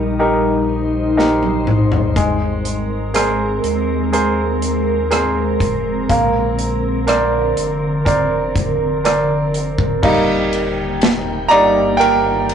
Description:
pop ballad; 61 BPM; 4/4; straight; Eb major; A4 = 440 Hz
bright grand piano; accompaniment; 0.0-12.5 s; Eb3 to Bb5; -17 LUFS; right 1 dB
glassy FM pad; sustained chords; 0.0-12.5 s; D3 to G5; -20 LUFS; equal; ensemble chorus, built-in reverb
sub bass with octave; bass; 0.0-12.5 s; Eb1 to Eb2; -25 LUFS; equal
modern studio drum kit; drums; 1.2-12.5 s; crash cymbal, hi-hat, kick drum, ride cymbal, rim click, snare drum, toms; -20 LUFS; left 1 dB
wet small room reverb, RT60 0.5 s; rough rehearsal-room recording, warm saturation, nothing above 10.9 kHz; -14 LUFS; side -8 dB against mid
0.0-10.0 A section; 10.0-12.5 B section
drum fill 1.2-2.2; grand piano solo 10.0-12.5
0.0 Eb; 2.2 Abadd9; 6.1 Bbadd9; 10.0 Eb

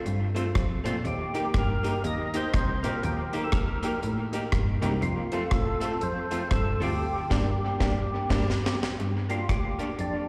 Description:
ska; 121 BPM; 4/4; swing 61% on 8ths; G minor; A4 = 440 Hz
archtop guitar, miked and amplified; accompaniment; 0.1-9.9 s; A3 to G4; -36 LUFS; equal; dub echo, slapback echo
warm upright piano; stabs; 0.1-8.4 s; C4 to Bb4; -40 LUFS; equal; dub echo, slapback echo
clear cello; bass; 0.1-10.3 s; C2 to Bb2; -32 LUFS; equal
deep reggae drum kit; drums; 0.1-10.1 s; crash cymbal, hi-hat, kick drum, rim click, snare drum; -32 LUFS; equal; dub echo
percussive tonewheel organ; melody; 1.1-10.3 s; D4 to Eb5; -34 LUFS; equal; overdrive, slow rotary speaker, dub echo, slapback echo
light reverb, small room ambience; live gig heard through the venue's PA, recital hall reverb; -28 LUFS; mono
0.0-9.0 A section; 9.0-10.3 B section
band accent 7.0-9.0; drum fill 8.0-9.0
0.0 F; 1.1 Eb; 5.0 F; 7.0 Gm

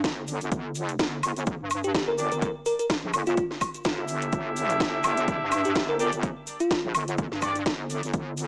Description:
bass house; 126 BPM; 4/4; swing 56% on 16ths; G dorian; A4 = 441 Hz
wobble bass; bass; 0.0-8.5 s; G1 to G2; -30 LUFS; equal; chorus, overdrive, sidechain pumping
electronic kick drum; drums; 0.0-8.2 s; -31 LUFS; equal; overdrive
house drum kit; drums; 0.0-8.5 s; hi-hat, snare drum, woodblock; -28 LUFS; equal; overdrive
tube shaker; percussion; 0.0-8.5 s; -42 LUFS; equal
bell-like FM electric piano; melody; 1.8-7.6 s; D4 to Bb4; -29 LUFS; equal; chorus, phaser, digital delay
brilliant horn section; stabs; 2.2-7.5 s; D4 to E5; -29 LUFS; equal; sidechain pumping, low-pass filter, digital delay
light reverb, digital ambience; small speaker sound; -24 LUFS; side -32 dB against mid
0.0-8.5 A section
filter sweep on horn section 0.0-8.5
0.0 G5

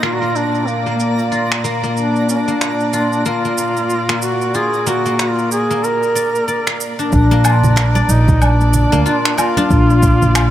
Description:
organic downtempo; 93 BPM; 4/4; swing 60% on 16ths; Bb major; A4 = 440 Hz
mellow duduk; melody; 0.0-10.5 s; Bb3 to Bb4; -18 LUFS; equal; tape echo
warm chamber string section; sustained chords; 0.0-10.5 s; Bb2 to D5; -22 LUFS; equal; sidechain pumping
guzheng; arpeggios; 0.0-10.5 s; Bb3 to F5; -21 LUFS; left 3 dB; low-pass filter, tape echo
electronic finger snaps, shaker and woodblock; drums; 0.0-10.5 s; -21 LUFS; equal; overdrive, low-pass filter on perc, low-pass filter on snare, low-pass filter on room
twinkling granular texture; texture; 0.0-7.1 s; Bb5; -30 LUFS; right 5 dB; built-in reverb
upright bass; bass; 7.1-10.5 s; Bb1 to D2; -13 LUFS; equal; sidechain pumping
electronic kick drum; drums; 7.1-10.2 s; -16 LUFS; equal; overdrive
congas; percussion; 7.3-10.3 s; -23 LUFS; right 3 dB
moderate lush hall reverb, RT60 3.1 s; -13 LUFS; side -12 dB against mid
0.0-7.1 A section; 7.1-10.5 B section
0.0 Bb

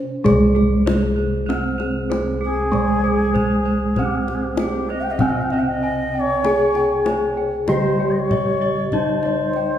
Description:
Javanese gamelan; 48 BPM; 4/4; straight; C pelog; A4 = 439 Hz
gamelan-type bronze metallophone; melody; 0.0-9.8 s; Ab3 to Ab4; -22 LUFS; right 1 dB
gamelan-type bronze metallophone; accompaniment; 0.0-9.8 s; C3 to Ab3; -27 LUFS; right 1 dB
gamelan-type bossed gongs; arpeggios; 0.0-9.8 s; Ab4 to Ab5; -28 LUFS; left 4 dB
gamelan-type bossed gongs; bass; 0.0-9.8 s; C2 to Ab4; -24 LUFS; equal
gamelan-type bronze metallophone; arpeggios; 0.3-9.8 s; Ab4 to Ab5; -28 LUFS; right 1 dB
kendang; percussion; 0.3-9.7 s; -27 LUFS; left 2 dB
bansuri; second line; 2.4-9.8 s; G4 to G5; -24 LUFS; left 1 dB
wet recital hall reverb, RT60 1.7 s; recorded in a church or concert hall, lossy compression artefacts; -17 LUFS; side -10 dB against mid
0.2-9.8 A section

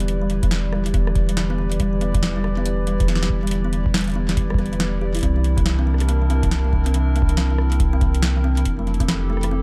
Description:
IDM; 140 BPM; 4/4; swing 62% on 16ths; E phrygian; A4 = 440 Hz
warbly tape-like pad; sustained chords; 0.0-9.6 s; C3 to D5; -31 LUFS; equal; chorus, built-in reverb
kalimba; arpeggios; 0.0-9.6 s; D3 to G4; -29 LUFS; equal; delay
warm sub bass; bass; 0.0-9.6 s; E1 to C2; -23 LUFS; equal
booming analog drum machine; drums; 0.0-9.5 s; hi-hat, rim click, snare drum; -29 LUFS; equal; delay
electronic kick drum; drums; 0.4-9.1 s; -24 LUFS; equal
light reverb; dark, warm production; -20 LUFS; mono
0.0-9.6 A section
0.0 Em7; 5.2 C7; 8.7 Fmaj7

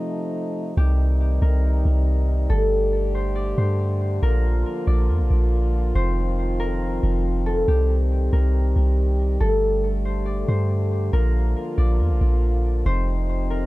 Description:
hip hop, atmospheric cloud-rap; 139 BPM; 4/4; half-time; C dorian; A4 = 439 Hz
mellow French horn section; sustained chords; 0.0-13.7 s; C3 to G4; -27 LUFS; equal
concert harp; melody; 0.8-13.7 s; G4 to D5; -28 LUFS; left 1 dB; digital delay
soft 808-style bass; bass; 0.8-13.7 s; F1 to G2; -20 LUFS; equal
small room ambience; dark, warm production; -19 LUFS; side -19 dB against mid
0.8-13.7 A section
0.0 F7; 0.8 Cm; 2.5 Gsus2; 4.2 Bb; 6.0 F5; 7.7 Cm; 9.4 Gsus2; 11.1 Bb; 12.9 F5

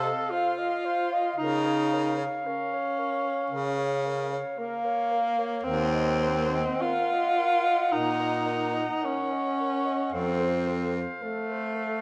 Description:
classical, lyrical piece for single-reed quartet; 55 BPM; 4/4; rubato; A4 = 440 Hz
clear clarinet; melody; 0.0-12.0 s; F5 to Gb5; -36 LUFS; equal
mellow alto saxophone; second line; 0.0-12.0 s; A4 to Eb5; -38 LUFS; equal
dark tenor saxophone; accompaniment; 0.0-12.0 s; A3 to A4; -29 LUFS; equal
clear baritone saxophone; bass; 0.0-11.0 s; Eb2 to Db3; -33 LUFS; equal
wet recital hall reverb, RT60 1.5 s; -27 LUFS; mono
0.0-12.0 A section
0.0 F7/C; 1.4 Bbm/Db; 5.6 Ebm; 10.1 F

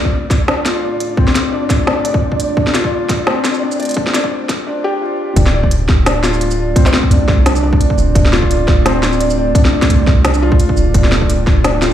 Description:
half-time drum and bass; 172 BPM; 4/4; swing 56% on 16ths, half-time; D minor; A4 = 441 Hz
deep dark ambient pad; sustained chords; 0.0-11.9 s; A3 to G5; -22 LUFS; right 4 dB; chorus, built-in reverb, vintage 12-bit sampler grit, sidechain pumping
felt-muted upright piano; arpeggios; 0.0-11.9 s; C4 to D5; -18 LUFS; left 4 dB; vintage 12-bit sampler grit, low-pass filter, tape echo
flickering grainy texture; texture; 0.2-4.7 s; D5; -26 LUFS; right 2 dB; built-in reverb
electronic kick drum; drums; 0.1-11.5 s; -14 LUFS; equal; overdrive
organic electronic drum kit; drums; 0.3-11.9 s; hi-hat, shaker, snare drum; -18 LUFS; equal
long sustained 808-style bass; bass; 5.4-11.9 s; D1 to C2; -15 LUFS; equal; tube saturation
digital ambience; played on a big sound system in a bare room, large studio reverb, high-pass filter; -11 LUFS; side -11 dB against mid
0.0-5.4 A section; 5.4-11.9 B section
build-up 0.0-5.4; break 4.7-5.4; drop 5.4-11.9
0.0 D5

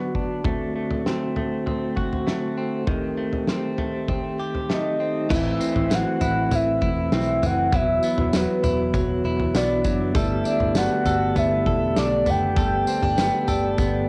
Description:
dream pop; 99 BPM; 4/4; straight; G major; A4 = 441 Hz
mellow tonewheel organ; sustained chords; 0.0-14.1 s; D3 to G4; -28 LUFS; equal; fast rotary speaker, low-pass filter
direct-recorded clean electric guitar; arpeggios; 0.0-14.1 s; Eb3 to A4; -32 LUFS; equal; subtle chorus, low-pass filter, tape echo
loose indie drum kit; drums; 0.1-13.9 s; crash cymbal, kick drum, snare drum, tambourine, toms; -29 LUFS; equal; cassette tape
soft octave-layered synth lead; melody; 4.7-14.1 s; B4 to G5; -26 LUFS; equal; chorus, phaser, tape echo
vintage muted picked electric bass; bass; 5.3-14.1 s; E1 to B1; -30 LUFS; equal
vibraphone with hard mallets; texture; 10.4-14.1 s; G4 to D5; -34 LUFS; equal; tape echo
moderate small room reverb, RT60 0.5 s; home recording on cassette; -23 LUFS; mono
0.0-5.3 A section; 5.3-14.1 B section
0.5 D7; 2.9 Cm6/Eb; 5.3 Am; 7.7 Esus2; 10.2 Gadd9

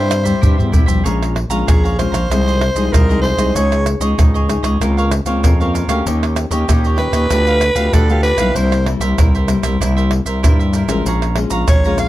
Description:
samba and choro; 96 BPM; 4/4; straight; A4 = 440 Hz
growling soprano saxophone; melody; 0.0-12.1 s; G4 to F5; -18 LUFS; equal; plate reverb
cavaquinho; accompaniment; 0.0-12.1 s; D4 to Bb5; -24 LUFS; right 3 dB
nylon-string guitar; accompaniment; 0.0-12.1 s; F2 to Ab4; -22 LUFS; left 4 dB
growling FM bass; bass; 0.0-12.1 s; A1 to G2; -17 LUFS; equal
maracas, pandeiro, tamborim and surdo; percussion; 0.1-12.1 s; -16 LUFS; equal
light reverb; -13 LUFS; side -15 dB against mid
0.0-1.1 A section; 1.1-12.1 B section
drum fill 0.1-1.1; soprano saxophone solo 1.1-12.1
0.0 C; 1.1 Bbm7; 2.3 Fm7/C; 3.6 Dbsus2; 4.8 Bbmadd9/Db; 6.1 Eb7; 7.3 G7/D; 8.6 C7; 11.1 Bbm7

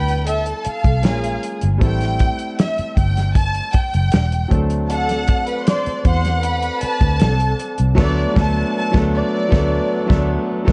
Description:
lush 1970s-style soul; 78 BPM; 4/4; straight; A4 = 435 Hz
warm studio violin section; melody; 0.0-10.3 s; D5 to A5; -26 LUFS; equal
muted studio string section; second line; 0.0-7.8 s; G#4 to C6; -28 LUFS; equal
bright concert grand piano; accompaniment; 0.0-10.7 s; E3 to B4; -26 LUFS; equal
vintage muted fingered electric bass; bass; 0.0-10.7 s; E1 to E2; -22 LUFS; equal
warm soul drum kit; drums; 0.1-10.7 s; crash cymbal, hi-hat, kick drum, snare drum; -20 LUFS; equal
tonewheel organ; sustained chords; 4.9-10.7 s; B3 to F#5; -34 LUFS; equal; slow rotary speaker
light reverb, studio ambience; dark, warm production, nothing above 10.3 kHz; -18 LUFS; mono
0.0-10.7 A section
band accent 8.0-10.7
0.0 Em7; 1.0 A#m7; 1.8 Am7; 4.5 D7; 8.0 Bm7/D

